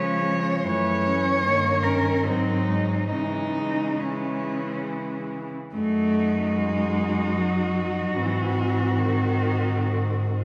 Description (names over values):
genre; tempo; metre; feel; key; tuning
classical, lyrical piece for cello ensemble; 67-79 BPM; 3/4; rubato; unclear; A4 = 436 Hz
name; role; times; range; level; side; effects
rich cello; melody; 0.0-10.4 s; C#4 to C#5; -30 LUFS; equal; none
rich cello; second line; 0.0-10.4 s; D#3 to D#4; -32 LUFS; equal; none
rich cello; accompaniment; 0.0-10.2 s; D#3 to C#4; -30 LUFS; equal; none
clear cello; bass; 0.0-10.4 s; F#2 to C#3; -30 LUFS; equal; none
room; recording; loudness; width
wet scoring stage reverb, RT60 2.1 s; heard from further back in the room; -24 LUFS; mono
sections
0.0-5.8 A section; 5.8-10.4 B section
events
none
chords
0.0 C#; 0.7 F#m7; 1.4 D#7/G; 2.3 G#7; 3.1 C#m; 5.8 D#dim/F#; 8.2 G#7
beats
| 0.67 1.44 2.25 | 3.12 4.00 4.88 | 5.75 6.57 7.38 | 8.18 8.99 9.76